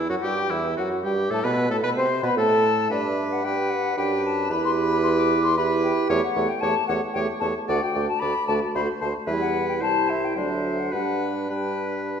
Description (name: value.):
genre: quick classical-period movement for wind quintet.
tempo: 113 BPM.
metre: 3/4.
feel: rubato.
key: G major.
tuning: A4 = 438 Hz.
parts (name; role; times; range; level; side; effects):
clear oboe; second line; 0.0-12.2 s; E4 to D5; -29 LUFS; left 2 dB; none.
dark clarinet; accompaniment; 0.0-12.2 s; D4 to C5; -28 LUFS; right 6 dB; none.
warm French horn; accompaniment; 0.0-12.2 s; E3 to E4; -28 LUFS; right 1 dB; none.
mellow bassoon; bass; 0.0-12.2 s; C2 to C3; -28 LUFS; right 2 dB; none.
mellow hollow silver concert flute; melody; 0.1-12.0 s; D5 to D6; -27 LUFS; left 7 dB; none.
room: wet recital hall reverb, RT60 1.4 s.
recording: none.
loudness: -21 LUFS.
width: side -7 dB against mid.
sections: 0.0-12.2 A section.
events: none.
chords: 0.0 G5; 1.3 Amadd9; 2.9 G; 4.5 Em; 6.1 A7/E; 7.7 D; 9.3 Em; 9.8 Am7/C; 10.4 D7; 10.9 G.